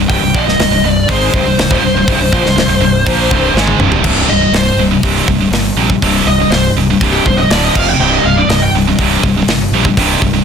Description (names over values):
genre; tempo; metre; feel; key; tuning
heavy metal; 122 BPM; 4/4; straight; C minor; A4 = 440 Hz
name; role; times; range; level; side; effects
distorted electric guitar; riff; 0.0-10.4 s; C2 to Bb3; -16 LUFS; left 11 dB; distortion
heavy high-gain guitar; riff; 0.0-10.4 s; C2 to Bb3; -15 LUFS; right 11 dB; distortion
fuzz fingered electric bass; bass; 0.0-10.4 s; C1 to Bb1; -17 LUFS; equal; overdrive
high-gain lead guitar; melody; 0.1-8.7 s; G4 to G5; -16 LUFS; equal; distortion, digital delay
tight metal drum kit; drums; 0.1-10.3 s; crash cymbal, hi-hat, kick drum, snare drum, toms; -16 LUFS; equal; soft clipping on kick
room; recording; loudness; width
small room reverb; dense, heavily limited modern master; -9 LUFS; side -7 dB against mid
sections
0.0-4.0 A section; 4.0-10.4 B section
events
drum fill 3.6-4.0; lead electric guitar solo 4.0-10.4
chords
0.0 Cm; 4.0 C5; 7.5 D5; 7.8 F5; 8.0 C5